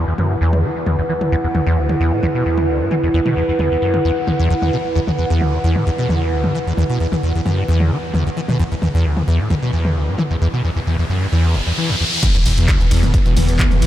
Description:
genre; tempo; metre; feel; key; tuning
driving peak-time techno; 132 BPM; 4/4; straight; unclear; A4 = 440 Hz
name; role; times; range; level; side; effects
acid bass, saw; riff; 0.0-13.9 s; E1 to E3; -17 LUFS; equal; ensemble chorus, sidechain pumping, tape echo
warbly tape-like pad; texture; 0.0-10.4 s; E4 to F#5; -22 LUFS; right 1 dB; chorus, built-in reverb, sidechain pumping
punchy analog drum machine; drums; 0.2-13.9 s; crash cymbal, handclaps, hi-hat, ride cymbal, toms; -24 LUFS; left 1 dB; sidechain pumping on hats, sidechain pumping on toms, sidechain pumping on cymbals
riser; sound effects; 10.6-12.2 s; none; -25 LUFS; equal; none
swarming drone; drone; 12.5-13.9 s; E3 to B3; -25 LUFS; right 1 dB; built-in reverb, sidechain pumping
electronic kick drum; drums; 12.2-13.7 s; none; -16 LUFS; equal; none
saturated sub bass; bass; 12.3-13.9 s; E1; -19 LUFS; equal; overdrive, sidechain pumping, low-pass filter
room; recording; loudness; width
moderate huge ambient reverb, RT60 6.5 s; dreamy mix soaked in reverb; -15 LUFS; side -12 dB against mid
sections
0.0-12.2 A section; 12.2-13.9 B section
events
riser 10.6-12.2; drop 12.2-13.9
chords
0.0 E5

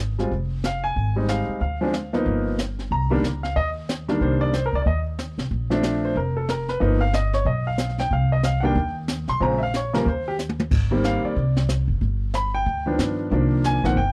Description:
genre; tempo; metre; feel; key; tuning
jazz piano trio; 185 BPM; 4/4; swing 61% on 8ths; C minor; A4 = 441 Hz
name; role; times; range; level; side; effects
upright bass; bass; 0.0-14.1 s; F1 to G2; -26 LUFS; equal; none
clear upright piano; melody; 0.2-14.1 s; Db3 to C6; -26 LUFS; equal; none
jazz brush drum kit; drums; 0.2-14.1 s; brushed snare drum, crash cymbal, hi-hat, kick drum, snare drum, toms; -29 LUFS; equal; none
room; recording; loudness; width
small room ambience; dry, close 1970s-style studio recording; -23 LUFS; mono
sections
0.0-5.5 A section; 5.5-14.1 B section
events
drum fill 10.4-10.7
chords
0.3 Fm9; 1.6 Dm; 2.3 G7alt; 2.9 Cm9; 5.5 Bbmaj9; 6.8 G7b13; 8.1 Cm; 9.4 Bbm9; 10.1 Eb5; 10.7 Abmaj9; 12.0 G7b13; 13.3 Cm11

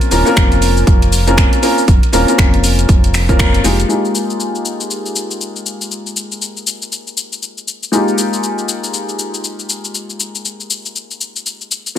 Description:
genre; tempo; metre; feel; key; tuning
deep house; 119 BPM; 4/4; swing 60% on 16ths; F minor; A4 = 440 Hz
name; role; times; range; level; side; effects
felt-muted upright piano; stabs; 0.0-12.0 s; Ab3 to Bb4; -17 LUFS; left 1 dB; vintage 12-bit sampler grit, sidechain pumping, low-pass filter, tape echo
house drum kit; drums; 0.0-11.9 s; finger snaps, hi-hat, shaker; -19 LUFS; left 3 dB; overdrive
round analog bass; bass; 0.1-3.9 s; Eb1 to F1; -15 LUFS; equal; none
electronic kick drum; drums; 0.4-3.5 s; none; -12 LUFS; equal; overdrive
room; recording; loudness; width
little or no reverb; none; -13 LUFS; side -10 dB against mid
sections
0.0-3.9 A section; 3.9-12.0 B section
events
band accent 3.4; filter sweep on felt piano 3.9-12.0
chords
0.0 F7sus4; 3.9 Fm11

